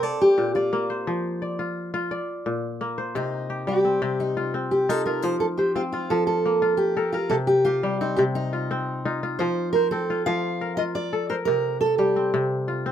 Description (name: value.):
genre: west african traditional, West African string and xylophone music.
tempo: 115 BPM (dotted quarters).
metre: 12/8.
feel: straight.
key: C dorian.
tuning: A4 = 440 Hz.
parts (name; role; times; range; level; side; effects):
fingerpicked steel-string acoustic guitar; melody; 0.0-12.3 s; Eb4 to F5; -23 LUFS; right 1 dB; none.
kora; arpeggios; 0.0-12.9 s; Bb2 to D5; -26 LUFS; left 2 dB; none.
room: light reverb.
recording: minimal, uncompressed stereo recording.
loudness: -22 LUFS.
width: side -10 dB against mid.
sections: 0.0-3.2 A section; 3.2-12.9 B section.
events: steel-string acoustic guitar solo 3.2-12.9.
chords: 0.0 Bb; 1.1 F5; 2.1 Bb; 3.2 Cm; 5.2 F; 7.3 Cm; 9.4 F; 11.5 C5.